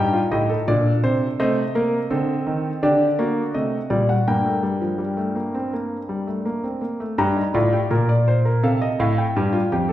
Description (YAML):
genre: classical, baroque-style 4-part fugue for grand piano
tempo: 83 BPM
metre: 4/4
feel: straight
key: G minor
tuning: A4 = 441 Hz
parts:
  - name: warm concert grand piano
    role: solo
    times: 0.0-9.9 s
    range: F2 to Bb5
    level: -18 LUFS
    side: equal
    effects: none
room: wet recital hall reverb, RT60 1.4 s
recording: recorded in a church or concert hall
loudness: -19 LUFS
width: side -13 dB against mid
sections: 0.0-7.2 A section; 7.2-9.9 B section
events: none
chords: 0.0 Ebmaj7/G; 1.4 Adim/C; 2.8 D7; 4.3 Gm; 8.6 Adim